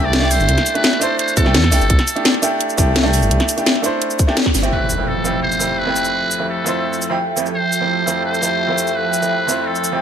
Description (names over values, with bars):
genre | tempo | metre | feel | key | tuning
liquid drum and bass | 170 BPM | 4/4 | straight | F lydian | A4 = 443 Hz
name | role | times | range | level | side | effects
trumpet with metal mute | melody | 0.0-10.0 s | A4 to D5 | -21 LUFS | equal | dub echo
bright baby grand piano | accompaniment | 0.0-10.0 s | F2 to C5 | -20 LUFS | right 1 dB | digital delay
dark detuned saw bass | bass | 0.0-4.7 s | G1 to E2 | -17 LUFS | equal | none
drum and bass drum kit | drums | 0.1-9.9 s | cabasa, hi-hat, snare drum | -18 LUFS | left 1 dB | overdrive
electronic kick drum | drums | 1.4-4.5 s | none | -16 LUFS | equal | overdrive
lush unison pad | sustained chords | 4.7-10.0 s | F3 to G5 | -24 LUFS | right 2 dB | chorus, phaser
impact | sound effects | 4.7-6.1 s | none | -25 LUFS | equal | none
room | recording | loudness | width
light reverb, digital ambience | none | -14 LUFS | side -8 dB against mid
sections
0.0-4.7 A section; 4.7-10.0 B section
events
drop 0.0-4.7; band accent 4.4; impact 4.7-6.1; filter sweep on analog synth pad 4.7-10.0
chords
0.0 C69; 4.7 Fmaj9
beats
0.14 | 0.49 0.84 1.19 1.55 | 1.90 2.25 2.60 2.96 | 3.31 3.66 4.02 4.37 | 4.72 5.08 5.43 5.78 | 6.13 6.49 6.84 7.19 | 7.55 7.90 8.25 8.61 | 8.96 9.31 9.66